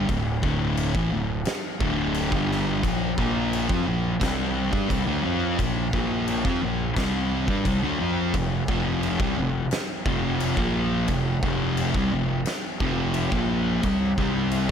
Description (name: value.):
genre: stoner and doom metal.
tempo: 87 BPM.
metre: 4/4.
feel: straight.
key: unclear.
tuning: A4 = 440 Hz.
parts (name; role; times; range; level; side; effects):
thick fuzz guitar; riff; 0.0-14.7 s; D2 to F4; -26 LUFS; left 9 dB; distortion.
thick fuzz guitar; riff; 0.0-14.7 s; D2 to F4; -27 LUFS; right 9 dB; distortion.
fuzz fingered electric bass; bass; 0.0-14.7 s; D1 to G2; -30 LUFS; equal; overdrive.
oversized low-tuned drum kit; drums; 0.1-14.7 s; crash cymbal, kick drum, snare drum; -29 LUFS; equal; none.
room: light reverb.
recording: none.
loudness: -22 LUFS.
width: side -8 dB against mid.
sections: 0.0-14.7 A section.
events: none.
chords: 0.0 D5; 2.8 Bb5; 8.3 F5; 13.8 C5.